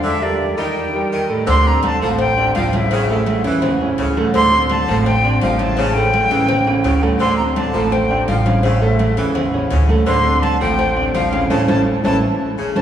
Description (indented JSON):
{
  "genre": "latin, salsa",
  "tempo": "168 BPM",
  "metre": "4/4",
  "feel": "straight",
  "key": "D minor",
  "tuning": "A4 = 440 Hz",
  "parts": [
    { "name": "breathy bright silver concert flute", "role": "melody", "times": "0.0-12.8 s", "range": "D5 to C6", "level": "-20 LUFS", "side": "left 1 dB", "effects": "none" },
    { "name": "bright saxophone section", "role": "second line", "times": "0.0-12.8 s", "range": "C#3 to G3", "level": "-24 LUFS", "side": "left 1 dB", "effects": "none" },
    { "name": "clear concert grand piano", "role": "accompaniment", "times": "0.0-12.8 s", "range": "A2 to Eb5", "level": "-19 LUFS", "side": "right 2 dB", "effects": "none" },
    { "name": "upright bass", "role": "bass", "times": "0.0-12.8 s", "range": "A1 to A2", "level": "-20 LUFS", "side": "equal", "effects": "none" },
    { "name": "agogo bells and timbales", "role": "percussion", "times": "1.5-12.8 s", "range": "none", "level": "-28 LUFS", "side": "right 2 dB", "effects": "none" },
    { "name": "congas", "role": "percussion", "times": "1.5-12.8 s", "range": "none", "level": "-26 LUFS", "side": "right 1 dB", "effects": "none" },
    { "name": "cowbell", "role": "percussion", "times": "1.5-12.8 s", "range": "none", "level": "-27 LUFS", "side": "left 4 dB", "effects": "none" }
  ],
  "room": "wet church reverb, RT60 3.4 s",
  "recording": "recorded in a church or concert hall, small room ambience",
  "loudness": "-14 LUFS",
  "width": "side -10 dB against mid",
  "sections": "0.0-1.5 A section; 1.5-12.8 B section",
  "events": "break 0.0-1.5; drum fill 6.7-7.2, 11.9-12.8; band accent 11.5-12.8",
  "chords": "0.0 Em7b5; 0.8 Eb; 1.5 Dm7; 2.9 A; 4.3 Dm7; 5.8 A7; 7.2 Dm7; 8.6 A; 10.1 Dm7; 11.5 A"
}